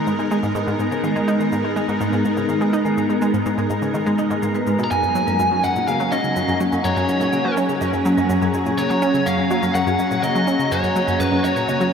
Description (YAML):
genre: ambient, sequencer-driven space music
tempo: 124 BPM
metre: 4/4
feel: straight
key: unclear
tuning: A4 = 440 Hz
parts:
  - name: evolving wavetable pad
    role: sustained chords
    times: 0.0-11.9 s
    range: F#3 to A#5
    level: -22 LUFS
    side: equal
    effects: ensemble chorus, built-in reverb, phaser, shimmer reverb
  - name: vibraphone with medium hard mallets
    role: arpeggios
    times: 0.0-11.9 s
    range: F#3 to B4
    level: -26 LUFS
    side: right 1 dB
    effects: auto-pan, low-pass filter, shimmer reverb, ping-pong delay
  - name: analog pluck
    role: riff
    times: 0.0-11.9 s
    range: F#2 to D#4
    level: -23 LUFS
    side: equal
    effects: chorus, shimmer reverb, ping-pong delay
  - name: bubbling stepped-filter texture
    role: texture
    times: 0.0-11.9 s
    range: F#4 to A#5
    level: -30 LUFS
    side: right 1 dB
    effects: chorus, built-in reverb, shimmer reverb
  - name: shaker and woodblock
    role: percussion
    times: 0.1-11.9 s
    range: none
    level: -41 LUFS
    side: right 1 dB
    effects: ping-pong delay
  - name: biting lead guitar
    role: melody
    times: 4.8-11.9 s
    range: B4 to A#5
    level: -22 LUFS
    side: equal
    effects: overdrive, shimmer reverb, ping-pong delay
room: wet huge ambient reverb, RT60 8.4 s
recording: dreamy mix soaked in reverb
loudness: -17 LUFS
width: side -6 dB against mid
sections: 0.0-11.9 A section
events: filter sweep on vibraphone 0.0-11.9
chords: 0.0 G#m; 4.9 F#add9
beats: 0.07 0.55 | 1.04 1.52 2.01 2.49 | 2.97 3.46 3.94 4.42 | 4.91 5.39 5.88 6.36 | 6.84 7.33 7.81 8.30 | 8.78 9.26 9.75 10.23 | 10.71 11.20 11.68